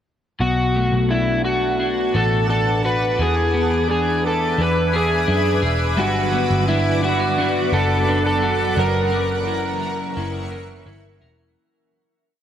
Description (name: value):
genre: dream pop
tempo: 86 BPM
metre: 4/4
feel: straight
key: B minor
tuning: A4 = 442 Hz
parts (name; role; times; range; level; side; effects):
- overdriven slide guitar; melody; 0.4-10.8 s; E4 to B4; -21 LUFS; equal; tape echo
- shimmering ambient pad; sustained chords; 1.4-11.5 s; A#4 to D6; -25 LUFS; right 1 dB; chorus, built-in reverb, phaser
- electric guitar at the edge of break-up; arpeggios; 0.4-12.1 s; B2 to A#4; -24 LUFS; left 3 dB; analog chorus, tape echo
- vintage muted picked electric bass; bass; 0.4-11.6 s; E1 to F#2; -23 LUFS; equal; none
- overdriven electric guitar; accompaniment; 6.0-12.1 s; F#2 to D4; -28 LUFS; right 4 dB; tremolo, lush chorus
room: moderate huge ambient reverb, RT60 4.6 s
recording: none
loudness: -17 LUFS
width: side -9 dB against mid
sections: 0.4-11.6 verse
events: fade-out 8.8-11.6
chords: 0.4 Bm7; 3.2 E7; 6.0 Gmaj7; 8.8 F#7